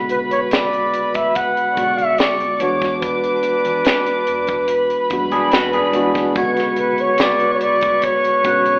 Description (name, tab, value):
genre	lush 1970s-style soul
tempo	72 BPM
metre	4/4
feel	straight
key	B dorian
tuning	A4 = 437 Hz
part	warm symphonic violin section	second line	0.0-8.8 s	D4 to D6	-25 LUFS	equal	none
part	mellow tine electric piano	accompaniment	0.0-8.8 s	C#3 to F#4	-26 LUFS	equal	none
part	hollow-body short-scale fingered electric bass	bass	0.0-8.8 s	F#1 to E3	-42 LUFS	equal	none
part	glockenspiel with hard plastic mallets	texture	0.0-0.5, 6.4-8.8 s	F#6 to B6	-30 LUFS	equal	none
part	breathy flugelhorn	melody	0.1-8.8 s	B4 to F#5	-20 LUFS	equal	none
part	tight funk drum kit	drums	0.1-8.8 s	hi-hat, kick drum, snare drum	-24 LUFS	equal	none
part	electric guitar through a small old amp	riff	5.3-6.3 s	D4 to B4	-22 LUFS	equal	none
room	wet large studio reverb, RT60 1.0 s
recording	band playing live in one room, telephone sound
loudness	-18 LUFS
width	mono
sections	0.0-8.8 A section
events	none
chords	0.0 Bm69; 2.6 E9; 6.4 Bm69